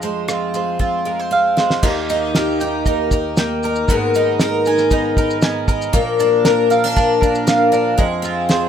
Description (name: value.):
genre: acoustic pop.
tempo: 117 BPM.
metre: 4/4.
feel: straight.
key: Eb major.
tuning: A4 = 440 Hz.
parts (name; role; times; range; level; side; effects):
picked twelve-string acoustic guitar; accompaniment; 0.0-8.7 s; F2 to Bb4; -18 LUFS; left 2 dB; lush chorus.
mandolin; arpeggios; 0.0-8.7 s; Ab3 to Ab5; -20 LUFS; right 3 dB; tape echo.
cloth-damped thuddy drum kit; drums; 0.0-8.6 s; crash cymbal, kick drum, rim click, shaker, snare drum; -18 LUFS; right 1 dB; none.
percussive tonewheel organ; sustained chords; 1.8-8.7 s; Eb2 to Bb4; -25 LUFS; right 1 dB; slow rotary speaker.
room: light reverb.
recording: rough home demo mix.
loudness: -14 LUFS.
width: side -8 dB against mid.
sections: 0.0-1.8 A section; 1.8-8.7 B section.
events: drum fill 0.8-1.8.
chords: 0.0 Fm; 1.8 Eb; 3.9 Abmadd9; 5.9 Bb; 8.0 Fm.